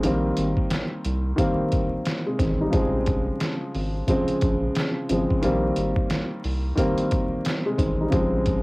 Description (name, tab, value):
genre	hip hop, boom-bap hip-hop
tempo	89 BPM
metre	4/4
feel	swing 59% on 16ths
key	unclear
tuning	A4 = 438 Hz
part	dark concert grand piano	accompaniment	0.0-8.6 s	C3 to Eb4	-24 LUFS	equal	cassette tape, high-pass filter, low-pass filter
part	round analog bass	bass	0.0-8.6 s	Ab1 to C2	-27 LUFS	equal	none
part	trip hop sampler-style drum kit	drums	0.0-8.6 s	hi-hat, kick drum, snare drum	-26 LUFS	equal	overdrive, cassette tape
room	little or no reverb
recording	home recording on cassette, vinyl crackle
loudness	-21 LUFS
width	side -23 dB against mid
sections	0.0-8.6 A section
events	none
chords	0.0 Abmaj7; 2.7 Bbm7; 5.4 Abmaj7; 8.1 Bbm7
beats	| 0.04 0.71 1.38 2.06 | 2.73 3.41 4.08 4.75 | 5.43 6.10 6.78 7.45 | 8.12